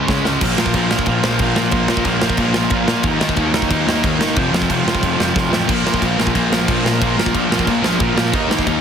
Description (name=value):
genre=punk rock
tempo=182 BPM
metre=4/4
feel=straight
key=unclear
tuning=A4 = 440 Hz
part: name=biting overdriven guitar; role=riff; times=0.0-8.8 s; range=F2 to Eb4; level=-20 LUFS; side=right 11 dB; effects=none
part: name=fuzz guitar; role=riff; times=0.0-0.4, 5.7-8.8 s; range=Bb2 to Eb4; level=-24 LUFS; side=equal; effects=distortion
part: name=sludgy distorted guitar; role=riff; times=0.0-8.8 s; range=F2 to Eb4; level=-20 LUFS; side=left 8 dB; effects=overdrive
part: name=fuzz picked electric bass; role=bass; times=0.1-8.8 s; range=F1 to Eb3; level=-23 LUFS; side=equal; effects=overdrive
part: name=big rock drum kit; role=drums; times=0.1-8.7 s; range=crash cymbal, kick drum, snare drum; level=-20 LUFS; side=right 1 dB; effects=none
room=little or no reverb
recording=heavily compressed radio sound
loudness=-14 LUFS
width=side -7 dB against mid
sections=0.4-8.8 A section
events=drum fill 0.0-0.4, 5.4-5.7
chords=0.4 Bb5; 3.0 Eb5; 4.4 F5; 5.7 Bb5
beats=0.08 | 0.41 0.74 1.07 1.40 | 1.73 2.06 2.39 2.72 | 3.05 3.38 3.71 4.04 | 4.37 4.70 5.03 5.36 | 5.69 6.02 6.35 6.68 | 7.01 7.34 7.67 8.00 | 8.33 8.66